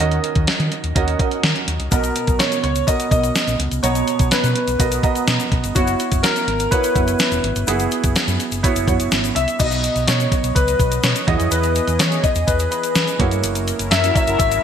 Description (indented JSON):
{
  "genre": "1980s-style pop",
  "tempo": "125 BPM",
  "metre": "4/4",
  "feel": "straight",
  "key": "unclear",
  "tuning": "A4 = 439 Hz",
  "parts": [
    { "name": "warm grand piano", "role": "accompaniment", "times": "0.0-14.6 s", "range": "B2 to A#5", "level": "-23 LUFS", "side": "right 6 dB", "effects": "analog chorus" },
    { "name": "hollow-body short-scale fingered electric bass", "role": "bass", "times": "0.0-14.6 s", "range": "E1 to E3", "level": "-22 LUFS", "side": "equal", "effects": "none" },
    { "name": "clean 12-bit digital drum machine", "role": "drums", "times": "0.0-14.6 s", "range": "crash cymbal, hi-hat, kick drum, snare drum", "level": "-20 LUFS", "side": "equal", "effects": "gated reverb" },
    { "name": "warm concert grand piano", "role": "melody", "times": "1.9-14.6 s", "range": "F#4 to E5", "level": "-21 LUFS", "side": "left 2 dB", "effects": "analog chorus, ping-pong delay" },
    { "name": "egg shaker", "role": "percussion", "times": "1.9-14.6 s", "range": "none", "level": "-31 LUFS", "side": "left 13 dB", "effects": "none" },
    { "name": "lush unison pad", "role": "sustained chords", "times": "10.3-14.6 s", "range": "E3 to D#5", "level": "-28 LUFS", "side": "left 1 dB", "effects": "chorus" },
    { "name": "mellow synth brass", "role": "stabs", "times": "14.0-14.4 s", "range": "E4 to A#4", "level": "-27 LUFS", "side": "right 2 dB", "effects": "chorus, phaser" }
  ],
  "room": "moderate plate reverb, RT60 2.0 s",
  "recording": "bright 1980s-style digital production",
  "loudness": "-16 LUFS",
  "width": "side -8 dB against mid",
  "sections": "0.0-9.6 A section; 9.6-14.6 B section",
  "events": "none",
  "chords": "0.0 D#m7; 1.9 Bmaj7; 5.8 F#7sus4; 9.6 B; 11.3 Emaj7; 13.2 F#7",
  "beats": "| 0.00 0.48 0.96 1.44 | 1.92 2.40 2.88 3.36 | 3.84 4.32 4.80 5.28 | 5.76 6.24 6.72 7.20 | 7.68 8.16 8.64 9.12 | 9.60 10.08 10.56 11.04 | 11.52 12.00 12.48 12.96 | 13.44 13.92 14.40"
}